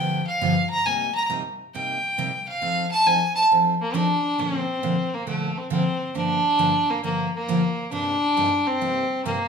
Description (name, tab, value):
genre	country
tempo	136 BPM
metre	4/4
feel	swing 68% on 8ths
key	Bb major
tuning	A4 = 440 Hz
part	clear fiddle	melody	0.0-9.5 s	A3 to Bb5	-22 LUFS	equal	none
part	picked steel-string acoustic guitar	accompaniment	0.0-9.4 s	G2 to A4	-26 LUFS	equal	none
room	wet large studio reverb, RT60 0.9 s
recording	band playing live in one room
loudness	-20 LUFS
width	side -6 dB against mid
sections	0.0-4.4 A section; 4.4-9.5 B section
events	fiddle solo 0.0-4.4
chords	0.0 G7; 0.9 Cm7; 2.6 F7; 4.4 Bbmaj9; 6.2 Gm7; 7.9 Cm7/G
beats	0.42 | 0.86 1.30 1.74 2.18 | 2.62 3.06 3.50 3.95 | 4.39 4.83 5.27 5.71 | 6.15 6.60 7.04 7.48 | 7.92 8.36 8.81 9.25